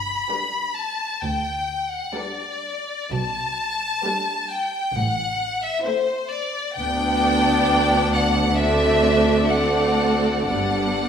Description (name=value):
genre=classical, slow romantic movement for string orchestra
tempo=59-68 BPM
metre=4/4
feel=rubato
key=G major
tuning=A4 = 439 Hz
part: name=clear chamber violin section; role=melody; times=0.0-11.1 s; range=C5 to B5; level=-23 LUFS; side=left 2 dB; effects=none
part: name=clear chamber cello section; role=bass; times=0.0-11.1 s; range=D2 to B2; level=-27 LUFS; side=right 1 dB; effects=none
part: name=clear chamber double bass section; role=bass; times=0.0-11.1 s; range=G1 to D2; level=-28 LUFS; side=right 2 dB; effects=none
part: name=rich chamber violin section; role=second line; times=0.3-11.1 s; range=D4 to D5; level=-25 LUFS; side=left 2 dB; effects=none
part: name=rich chamber viola section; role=accompaniment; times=0.3-11.1 s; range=G3 to D4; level=-23 LUFS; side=right 2 dB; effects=none
room=wet recital hall reverb, RT60 1.3 s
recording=recorded in a church or concert hall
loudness=-19 LUFS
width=side -8 dB against mid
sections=0.0-11.1 A section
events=none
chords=0.0 G; 3.1 G/B; 5.0 Am; 6.8 G/D; 8.6 D7; 10.5 G